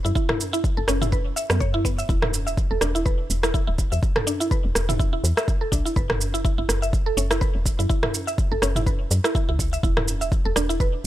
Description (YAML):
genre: afro house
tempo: 124 BPM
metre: 4/4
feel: swing 56% on 16ths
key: unclear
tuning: A4 = 440 Hz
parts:
  - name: mallet-like synth pluck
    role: arpeggios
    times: 0.0-10.9 s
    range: B3 to E5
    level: -27 LUFS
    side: right 1 dB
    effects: wide subtle chorus, sidechain pumping, tape echo
  - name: woody FM bass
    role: bass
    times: 0.1-11.1 s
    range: D1 to F#2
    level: -25 LUFS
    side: equal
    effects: sidechain pumping
  - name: deep house drum kit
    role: drums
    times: 0.1-10.9 s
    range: rim click, shaker, toms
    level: -26 LUFS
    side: right 1 dB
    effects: overdrive
  - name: electronic kick drum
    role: drums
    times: 0.2-10.9 s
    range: none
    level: -23 LUFS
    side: equal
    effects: overdrive
room: digital ambience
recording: dry, gritty hardware recording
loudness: -20 LUFS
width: side -14 dB against mid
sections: 0.0-11.1 A section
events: none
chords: 0.0 F#7(no3); 2.1 E5; 6.0 F#7(no3); 9.8 E5